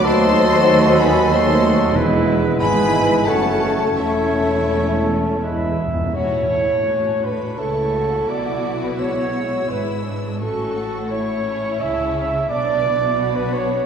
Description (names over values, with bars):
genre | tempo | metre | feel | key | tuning
classical | 82-95 BPM | 3/4 | rubato | A major | A4 = 440 Hz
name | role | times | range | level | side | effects
warm symphonic violin section | melody | 0.0-13.9 s | E5 to E6 | -27 LUFS | left 2 dB | none
clear oboe | second line | 0.0-5.8 s | A4 to C#5 | -28 LUFS | right 1 dB | none
mellow hollow silver concert flute | second line | 0.0-5.4 s | C#5 to A5 | -25 LUFS | equal | none
rich studio violin section | second line | 0.0-13.9 s | C#4 to B#4 | -26 LUFS | left 4 dB | none
mellow bassoon | accompaniment | 0.0-5.8 s | F#3 to A3 | -25 LUFS | left 1 dB | none
warm studio viola section | accompaniment | 0.0-13.9 s | G#3 to F#4 | -25 LUFS | right 1 dB | none
clear trombone section | sustained chords | 0.0-5.8 s | C#3 to A3 | -28 LUFS | equal | none
mellow French horn section | sustained chords | 0.0-5.8 s | A3 to F#4 | -25 LUFS | left 1 dB | none
mellow trumpet section | stabs | 0.0-13.9 s | A4 to E5 | -22 LUFS | right 2 dB | none
mellow tuba | bass | 0.0-5.9 s | E1 to D#2 | -26 LUFS | right 2 dB | none
warm studio cello section | bass | 0.0-13.9 s | D#2 to C#3 | -27 LUFS | right 2 dB | none
warm studio double bass section | bass | 0.0-13.9 s | E1 to D#2 | -28 LUFS | right 2 dB | none
timpani | percussion | 1.9-6.1 s | E2 | -29 LUFS | equal | none
room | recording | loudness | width
wet church reverb, RT60 2.6 s | recorded in a church or concert hall | -16 LUFS | side -7 dB against mid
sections
0.0-6.1 A section; 6.1-13.9 B section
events
timpani fill 5.4-6.1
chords
0.0 D#dim7; 1.9 E; 3.3 F#m; 4.0 A/E; 5.4 E; 6.1 A; 8.3 E7/B; 10.4 A; 12.5 E7(no3)/B